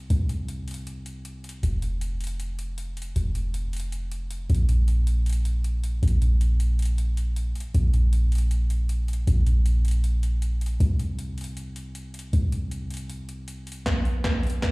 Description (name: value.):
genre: future bass.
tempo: 157 BPM.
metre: 4/4.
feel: half-time.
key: unclear.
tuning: A4 = 440 Hz.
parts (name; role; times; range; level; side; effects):
warm 808-style bass; bass; 0.0-13.8 s; F1 to C2; -23 LUFS; equal; sidechain pumping.
trap drum kit; drums; 0.1-14.7 s; hi-hat, snare drum; -36 LUFS; equal; overdrive.
electronic kick drum; drums; 13.9-14.7 s; none; -25 LUFS; equal; none.
room: little or no reverb.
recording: played on a big sound system in a bare room, large studio reverb, small room reverb.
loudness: -22 LUFS.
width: side -26 dB against mid.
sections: 0.0-13.9 A section.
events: drum fill 13.9-14.7.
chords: none.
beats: | 0.10 0.48 0.87 1.25 | 1.63 2.01 2.40 2.78 | 3.16 3.54 3.92 4.31 | 4.69 5.07 5.45 5.83 | 6.22 6.60 6.98 7.36 | 7.75 8.13 8.51 8.89 | 9.27 9.66 10.04 10.42 | 10.80 11.19 11.57 11.95 | 12.33 12.71 13.10 13.48 | 13.86 14.24 14.62.